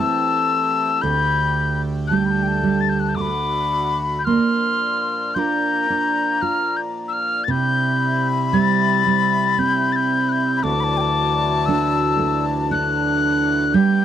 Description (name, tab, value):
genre	celtic folk, Celtic slow air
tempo	57 BPM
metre	3/4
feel	rubato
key	unclear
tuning	A4 = 440 Hz
part	mellow wooden whistle	melody	0.0-14.0 s	D6 to A6	-21 LUFS	left 4 dB	none
part	wooden flute	second line	0.0-14.0 s	G5 to D6	-24 LUFS	left 5 dB	slapback echo
part	nylon-string guitar	accompaniment	0.0-14.0 s	D2 to Bb4	-21 LUFS	right 4 dB	none
part	accordion	sustained chords	0.0-14.0 s	Bb2 to G4	-30 LUFS	equal	none
room	light reverb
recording	dry, close 1970s-style studio recording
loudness	-17 LUFS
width	side -10 dB against mid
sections	0.0-14.0 A section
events	none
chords	0.0 Am7/E; 1.0 Dsus4; 3.2 D; 4.3 Bb; 7.5 C; 10.6 Dadd9